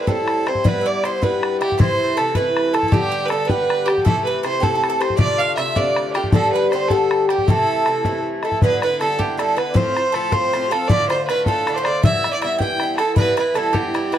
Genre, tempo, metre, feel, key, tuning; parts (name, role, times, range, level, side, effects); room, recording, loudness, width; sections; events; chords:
celtic folk, Celtic jig; 105 BPM (dotted quarters); 6/8; straight; A minor; A4 = 439 Hz
clear fiddle; melody; 0.0-14.2 s; G4 to G5; -21 LUFS; right 2 dB
bowl-back mandolin; second line; 0.0-14.2 s; G4 to G5; -28 LUFS; right 7 dB
mellow accordion; second line; 0.0-14.2 s; G4 to G5; -25 LUFS; equal
Irish bouzouki; accompaniment; 0.0-14.2 s; G2 to G4; -23 LUFS; left 1 dB
bodhran; percussion; 0.1-14.2 s; -20 LUFS; left 2 dB
moderate studio reverb, RT60 0.6 s; dark, warm production; -16 LUFS; side -10 dB against mid
0.0-8.6 A section; 8.6-14.2 B section
0.0 Am7; 0.6 Em/G; 1.8 Am; 2.9 G; 4.1 Am7; 5.2 Dm7; 6.3 G; 7.5 Am; 8.6 Em7; 9.7 F; 10.9 Dm; 12.0 Em